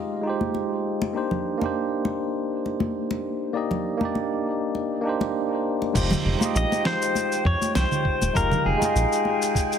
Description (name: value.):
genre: sunset chillout.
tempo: 100 BPM.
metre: 4/4.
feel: swing 54% on 16ths.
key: F minor.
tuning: A4 = 440 Hz.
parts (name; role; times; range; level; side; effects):
bright tine electric piano; accompaniment; 0.0-9.8 s; Ab3 to G5; -26 LUFS; moving between left 5 dB and right 6 dB; auto-pan, ping-pong delay.
congas; percussion; 0.4-9.4 s; none; -30 LUFS; left 2 dB; none.
round analog bass; bass; 6.0-9.1 s; Eb1 to F2; -24 LUFS; equal; none.
dusty soul sampler-style drum kit; drums; 6.0-9.8 s; congas, crash cymbal, shaker, snare drum; -28 LUFS; right 2 dB; none.
electronic kick drum; drums; 6.0-9.7 s; none; -25 LUFS; equal; none.
wind-like tuned noise texture; texture; 6.3-9.8 s; G5; -33 LUFS; right 4 dB; built-in reverb.
pedal steel guitar; melody; 6.6-9.8 s; Ab4 to Eb5; -24 LUFS; left 4 dB; vintage 12-bit sampler grit, ping-pong delay.
room: moderate plate reverb, RT60 2.7 s.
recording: heavily compressed radio sound, multiband compression.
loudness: -22 LUFS.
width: side -8 dB against mid.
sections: 0.0-6.0 A section; 6.0-9.8 B section.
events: none.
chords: 0.0 Fm9; 1.2 Cm9; 6.0 Fm9.